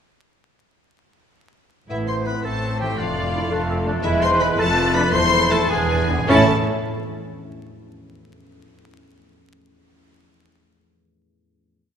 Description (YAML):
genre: classical, dramatic, fast romantic movement for symphony orchestra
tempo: 98-115 BPM (dotted quarters)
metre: 6/8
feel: rubato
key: A minor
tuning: A4 = 440 Hz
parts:
  - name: rich symphonic violin section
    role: melody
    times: 1.9-6.5 s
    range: E5 to C6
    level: -25 LUFS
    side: left 3 dB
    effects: none
  - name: bright clarinet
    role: second line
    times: 1.9-6.5 s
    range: C4 to F4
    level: -28 LUFS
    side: equal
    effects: none
  - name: hollow small flute group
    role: second line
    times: 1.9-6.5 s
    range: E5 to C6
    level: -27 LUFS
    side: left 1 dB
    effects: none
  - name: warm oboe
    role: second line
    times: 1.9-6.5 s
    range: E4 to C5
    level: -28 LUFS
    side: right 1 dB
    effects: none
  - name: warm symphonic violin section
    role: second line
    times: 1.9-6.5 s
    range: E4 to C5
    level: -29 LUFS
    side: left 1 dB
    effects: none
  - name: mellow bassoon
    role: accompaniment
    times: 1.9-6.4 s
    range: G#3 to C#4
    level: -28 LUFS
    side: right 2 dB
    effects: none
  - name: concert harp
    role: arpeggios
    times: 1.9-6.5 s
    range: E2 to E5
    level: -28 LUFS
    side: left 3 dB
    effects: none
  - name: rich symphonic cello section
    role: bass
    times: 1.9-6.5 s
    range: E2 to A2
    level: -27 LUFS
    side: right 2 dB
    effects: none
  - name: rich symphonic double bass section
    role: bass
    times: 1.9-6.5 s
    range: E1 to A1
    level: -28 LUFS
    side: right 3 dB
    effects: none
  - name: warm French horn section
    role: sustained chords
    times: 2.3-6.5 s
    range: G#3 to E4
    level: -28 LUFS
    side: left 2 dB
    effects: none
  - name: clear symphonic viola section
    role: accompaniment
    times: 2.4-6.5 s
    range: C#4 to D5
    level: -27 LUFS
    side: right 1 dB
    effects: none
  - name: timpani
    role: percussion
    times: 5.1-6.5 s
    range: E2 to A2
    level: -29 LUFS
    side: right 2 dB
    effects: none
room: wet scoring stage reverb, RT60 2.0 s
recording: minimal, uncompressed stereo recording, vinyl crackle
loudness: -17 LUFS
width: side -8 dB against mid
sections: 1.9-6.3 A section; 6.3-7.4 final chord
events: timpani fill 5.7-6.3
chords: 1.9 Am; 3.0 Dm/F; 4.0 E; 4.6 Dm/F; 5.1 Am/E; 5.7 E7; 6.3 A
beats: | 1.90 2.45 | 2.99 3.52 | 4.04 4.58 | 5.13 5.70 | 6.29